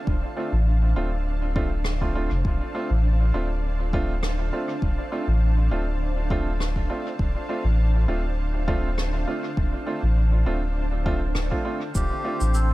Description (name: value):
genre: ambient dub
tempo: 101 BPM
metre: 4/4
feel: swing 54% on 16ths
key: D minor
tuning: A4 = 440 Hz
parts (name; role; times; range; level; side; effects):
- granular cloud pad; sustained chords; 0.0-12.7 s; D4 to A5; -33 LUFS; right 1 dB; built-in reverb
- warm sub bass; bass; 0.1-12.7 s; D1 to A1; -22 LUFS; equal; none
- electronic kick drum; drums; 0.1-12.1 s; none; -27 LUFS; equal; none
- warm upright piano; stabs; 0.4-12.4 s; A3 to F4; -30 LUFS; right 1 dB; dub echo
- rim click and shaker; drums; 1.8-12.7 s; none; -36 LUFS; equal; dub echo
- drifting glass-harmonics texture; texture; 12.2-12.7 s; C4 to C5; -34 LUFS; right 1 dB; chorus, built-in reverb
- melodica; melody; 12.0-12.7 s; G4 to A4; -29 LUFS; left 1 dB; dub echo
room: small room reverb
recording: none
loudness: -22 LUFS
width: side -18 dB against mid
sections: 0.0-12.7 A section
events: none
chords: 0.0 Dm7